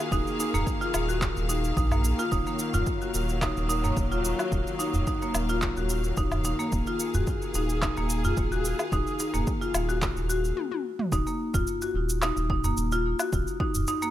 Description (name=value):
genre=organic downtempo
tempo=109 BPM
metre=4/4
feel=swing 53% on 16ths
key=Eb minor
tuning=A4 = 440 Hz
part: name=clear symphonic string section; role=sustained chords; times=0.0-10.6 s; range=Eb3 to F5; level=-34 LUFS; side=equal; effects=sidechain pumping
part: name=marimba with hard mallets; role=arpeggios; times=0.1-14.1 s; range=Bb3 to Gb4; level=-29 LUFS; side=left 1 dB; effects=digital delay
part: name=round analog bass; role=bass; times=0.1-13.8 s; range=Eb1 to Bb1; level=-29 LUFS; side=equal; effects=none
part: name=deep house drum kit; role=drums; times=0.1-14.1 s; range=handclaps, shaker, toms, woodblock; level=-33 LUFS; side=equal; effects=overdrive
part: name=electronic kick drum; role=drums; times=0.1-13.7 s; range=none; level=-31 LUFS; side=equal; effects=overdrive
part: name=udu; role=percussion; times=0.5-13.9 s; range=none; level=-32 LUFS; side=right 1 dB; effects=none
room=light reverb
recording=none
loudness=-25 LUFS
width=side -13 dB against mid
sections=0.0-11.1 A section; 11.1-14.1 B section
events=drum fill 10.6-11.1; stop 10.6-11.1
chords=0.0 Ebmadd9; 11.1 Ebsus2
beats=| 0.12 0.67 1.22 1.77 | 2.32 2.87 3.42 3.97 | 4.52 5.07 5.62 6.17 | 6.72 7.27 7.82 8.37 | 8.92 9.47 10.02 10.57 | 11.12 11.68 12.23 12.78 | 13.33 13.88